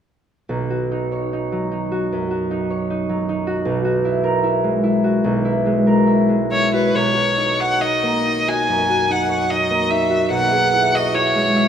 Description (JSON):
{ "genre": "classical, impressionist duo for violin and harp", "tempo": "66-79 BPM", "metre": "4/4", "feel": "rubato", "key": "B major", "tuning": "A4 = 442 Hz", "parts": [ { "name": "concert harp", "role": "accompaniment", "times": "0.5-11.7 s", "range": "B1 to C#5", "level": "-18 LUFS", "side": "equal", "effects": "none" }, { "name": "rich violin", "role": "melody", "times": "6.5-11.7 s", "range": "B4 to G#5", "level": "-17 LUFS", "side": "equal", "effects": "none" } ], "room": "moderate scoring stage reverb, RT60 2.0 s", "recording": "none", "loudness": "-16 LUFS", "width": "side -8 dB against mid", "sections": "0.5-7.0 A section; 7.0-11.7 B section", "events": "none", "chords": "0.5 Badd9; 3.7 F#9/B; 7.0 Bmaj9; 10.3 F#11/B" }